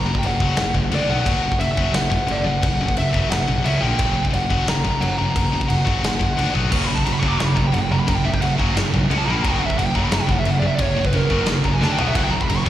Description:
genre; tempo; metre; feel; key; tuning
heavy metal; 176 BPM; 4/4; straight; F# phrygian dominant; A4 = 440 Hz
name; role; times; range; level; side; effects
smooth overdriven lead guitar; melody; 0.0-12.6 s; A#4 to D6; -25 LUFS; right 1 dB; slapback echo, tape echo
heavy high-gain guitar; riff; 0.0-12.7 s; F#2 to D4; -24 LUFS; left 5 dB; distortion, slapback echo
fuzz picked electric bass; bass; 0.0-12.7 s; F#1 to D2; -22 LUFS; equal; overdrive
big rock drum kit; drums; 0.1-12.7 s; crash cymbal, kick drum, snare drum, toms; -23 LUFS; equal; none
scooped high-gain guitar; riff; 6.7-12.7 s; F#2 to D4; -25 LUFS; right 8 dB; distortion, slapback echo
room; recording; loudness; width
small room ambience; live gig heard through the venue's PA, recital hall reverb; -17 LUFS; side -12 dB against mid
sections
0.0-12.7 A section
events
lead electric guitar solo 0.0-12.7; drum fill 6.5, 11.8-12.2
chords
0.0 F#5; 0.9 D5; 1.1 B5; 1.3 F#5; 3.7 C#5; 3.8 A#5; 4.0 F#; 6.4 D5; 6.5 B5; 6.7 F#5; 9.1 C#5; 9.3 A#5; 9.4 F#; 11.8 D5; 12.0 B5; 12.2 F#5

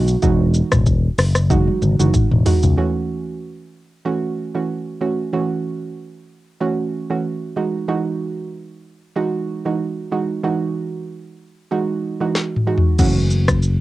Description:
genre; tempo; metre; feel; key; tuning
afrobeats; 94 BPM; 4/4; swing 55% on 16ths; F# dorian; A4 = 439 Hz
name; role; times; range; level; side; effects
soft round pluck; accompaniment; 0.0-13.6 s; E3 to F#4; -21 LUFS; right 4 dB; chorus, cassette tape
fingered electric bass; bass; 0.0-2.7, 13.0-13.8 s; E1 to C#2; -17 LUFS; left 1 dB; none
afro-pop drum kit; drums; 0.1-2.8, 12.4-13.8 s; crash cymbal, hi-hat, kick drum, rim click, shaker, snare drum, toms; -18 LUFS; left 1 dB; cassette tape
room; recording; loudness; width
light reverb; home recording on cassette; -17 LUFS; side -16 dB against mid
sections
0.0-2.8 A section; 2.8-13.0 B section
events
drum fill 1.5-2.8, 12.4-13.0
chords
0.0 Emaj9; 2.8 F#m7; 7.6 Emaj9; 13.0 F#m7

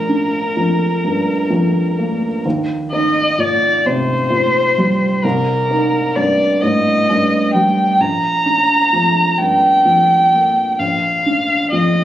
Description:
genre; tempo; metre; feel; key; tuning
neoclassical piano and strings; 43 BPM (dotted quarters); 6/8; rubato; Bb major; A4 = 435 Hz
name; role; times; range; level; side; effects
muted violin; melody; 0.0-12.0 s; Bb4 to Bb5; -15 LUFS; equal; slapback echo
felt-muted upright piano; accompaniment; 0.0-12.0 s; Bb1 to Eb4; -17 LUFS; equal; none
room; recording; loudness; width
little or no reverb; recorded on a phone in the room, club reverb, compression; -13 LUFS; side -12 dB against mid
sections
0.0-12.0 A section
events
none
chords
0.0 Bbmaj7; 2.4 Eb; 5.2 Cm7; 8.0 Bb

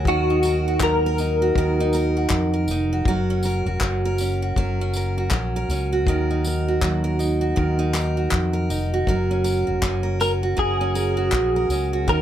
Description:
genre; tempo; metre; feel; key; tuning
acoustic pop; 80 BPM; 4/4; swing 60% on 16ths; F# major; A4 = 439 Hz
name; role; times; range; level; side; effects
direct-recorded clean electric guitar; melody; 0.0-2.7, 10.2-12.2 s; F#4 to A#4; -23 LUFS; left 2 dB; ensemble chorus
picked steel-string acoustic guitar; accompaniment; 0.0-12.2 s; D#3 to A#4; -23 LUFS; right 2 dB; none
fretless electric bass; bass; 0.0-12.2 s; E#1 to E#2; -24 LUFS; left 1 dB; none
natural country drum kit; drums; 0.1-12.2 s; handclaps, kick drum, tambourine; -26 LUFS; left 2 dB; none
room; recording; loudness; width
light reverb; none; -19 LUFS; side -10 dB against mid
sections
0.0-12.2 A section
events
none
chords
0.1 D#m

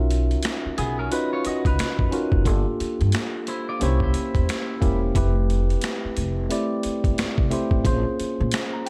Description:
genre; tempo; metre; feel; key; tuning
R&B, neo-soul; 89 BPM; 4/4; swing 61% on 16ths; unclear; A4 = 440 Hz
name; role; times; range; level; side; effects
tine electric piano; accompaniment; 0.0-8.9 s; A3 to A#5; -28 LUFS; equal; none
upright bass; bass; 0.0-8.5 s; E1 to A#2; -26 LUFS; equal; none
boom bap sampler-style drum kit; drums; 0.1-8.9 s; finger snaps, hi-hat, kick drum, snare drum; -27 LUFS; equal; none
clean electric guitar; second line; 0.8-5.0 s; B3 to D#5; -33 LUFS; equal; spring reverb
room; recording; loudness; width
little or no reverb; none; -23 LUFS; mono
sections
0.0-8.9 A section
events
none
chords
0.0 Bmaj9#11; 2.5 Gm9; 3.8 C7b9; 5.2 Fmaj9#11; 7.8 A#m7

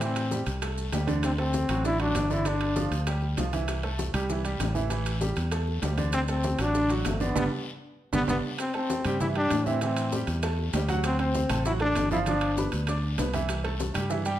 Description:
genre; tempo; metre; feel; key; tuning
latin, salsa; 196 BPM; 4/4; straight; C major; A4 = 440 Hz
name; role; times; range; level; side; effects
bright trombone; melody; 0.0-2.9, 6.1-12.7 s; A3 to E4; -28 LUFS; left 2 dB; none
bright upright piano; accompaniment; 0.0-14.4 s; D3 to D6; -32 LUFS; right 4 dB; none
fingered electric bass; bass; 0.0-14.4 s; G1 to A2; -29 LUFS; equal; none
bongos; percussion; 0.0-14.3 s; none; -39 LUFS; left 7 dB; none
congas; percussion; 0.0-14.4 s; none; -37 LUFS; left 2 dB; none
guiro; percussion; 0.0-14.4 s; none; -43 LUFS; left 6 dB; none
maracas; percussion; 0.0-14.4 s; none; -44 LUFS; right 5 dB; none
timbales; percussion; 0.0-14.4 s; none; -37 LUFS; right 5 dB; none
room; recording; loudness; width
moderate large studio reverb, RT60 1.1 s; none; -25 LUFS; side -12 dB against mid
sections
0.0-8.6 A section; 8.6-14.4 A section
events
band accent 7.4-8.6; drum fill 8.0-8.6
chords
0.0 Am7; 1.2 D7; 2.5 G5; 3.7 C6; 4.9 A5; 6.1 D7; 7.4 G; 8.6 C6; 9.8 Am7; 11.0 D7; 12.3 G7; 13.5 C6

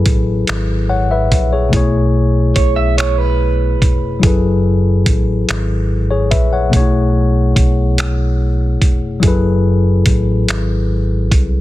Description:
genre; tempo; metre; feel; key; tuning
slow six-eight R&B; 48 BPM (dotted quarters); 6/8; straight; F# minor; A4 = 440 Hz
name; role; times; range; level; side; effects
tine electric piano; accompaniment; 0.0-11.6 s; B2 to F#5; -16 LUFS; left 4 dB; none
hollow-body short-scale fingered electric bass; bass; 0.0-11.6 s; E#1 to B#1; -16 LUFS; right 1 dB; none
dusty soul sampler-style drum kit; drums; 0.1-11.5 s; finger snaps, hi-hat, kick drum; -15 LUFS; right 1 dB; soft clipping on snare
electric guitar through a small old amp; second line; 2.6-4.2 s; B4 to E5; -19 LUFS; right 9 dB; none
room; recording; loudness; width
digital ambience; dense, heavily limited modern master; -12 LUFS; side -15 dB against mid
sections
0.0-11.6 A section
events
none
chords
0.0 F#m11; 1.7 B13sus4; 4.2 F#m11; 6.7 B13sus4; 9.2 F#m11

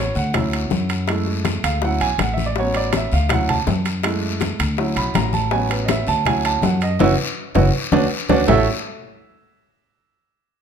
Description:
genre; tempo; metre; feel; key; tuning
Afro-Cuban jazz; 162 BPM; 4/4; straight; A major; A4 = 439 Hz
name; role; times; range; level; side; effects
warm baby grand piano; accompaniment; 0.0-8.7 s; F#3 to B5; -21 LUFS; right 4 dB; none
upright bass; bass; 0.0-8.7 s; F#1 to F#2; -21 LUFS; left 1 dB; none
congas; percussion; 0.2-8.6 s; none; -26 LUFS; left 4 dB; none
guiro; percussion; 0.2-8.6 s; none; -31 LUFS; left 6 dB; none
bongos; percussion; 0.3-8.6 s; none; -26 LUFS; left 9 dB; none
timbales; percussion; 0.3-8.6 s; none; -26 LUFS; right 7 dB; none
room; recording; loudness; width
light reverb; minimal, uncompressed stereo recording; -17 LUFS; side -7 dB against mid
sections
0.0-8.5 A section; 8.5-10.0 B section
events
grand piano solo 0.0-8.5; band accent 7.0-8.5; drum fill 7.4-8.5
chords
0.3 Dmaj7; 1.1 F#m7; 1.8 Dmaj7; 2.6 A6; 3.3 Dmaj7; 4.0 F#m7; 4.8 Dmaj7; 5.5 A6; 6.3 Dmaj7; 7.0 F#5; 7.7 Dmaj7; 8.5 A6

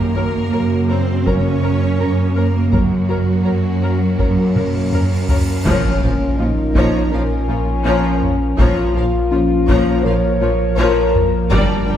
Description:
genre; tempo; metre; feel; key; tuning
cinematic, hybrid orchestral and electronic film score; 82 BPM; 4/4; straight; Bb minor; A4 = 441 Hz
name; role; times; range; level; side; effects
bright symphonic violin section; melody; 0.0-11.9 s; Gb4 to Bb5; -33 LUFS; left 2 dB; none
bowed-like drone; sustained chords; 0.0-12.0 s; Db3 to Bb4; -23 LUFS; equal; built-in reverb
clear studio double bass section; bass; 0.0-12.0 s; G1 to Gb2; -22 LUFS; right 1 dB; none
rich symphonic cello section; bass; 0.0-12.0 s; G2 to Db4; -23 LUFS; right 2 dB; none
warm symphonic violin section; second line; 0.2-12.0 s; F4 to Bb5; -27 LUFS; left 4 dB; none
clear symphonic viola section; accompaniment; 0.2-12.0 s; F3 to Bb4; -25 LUFS; right 1 dB; none
harp-like synth pluck; arpeggios; 0.2-12.0 s; Gb3 to Bb4; -26 LUFS; left 1 dB; chorus
taiko ensemble; drums; 1.3-12.0 s; none; -20 LUFS; equal; none
cymbal swell and impact; sound effects; 4.5-8.6 s; none; -27 LUFS; equal; none
mellow French horn section; sustained chords; 5.7-12.0 s; Db4 to Db5; -20 LUFS; left 3 dB; none
pure sine sub bass; bass; 5.7-12.0 s; G1 to Bb1; -21 LUFS; equal; none
room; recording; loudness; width
wet scoring stage reverb, RT60 1.7 s; heard from further back in the room; -14 LUFS; side -10 dB against mid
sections
0.0-5.7 A section; 5.7-12.0 B section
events
cymbal swell 4.5-5.7; drum fill 4.6-5.7; impact 5.7-8.6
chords
0.0 Gb; 5.7 Bbm

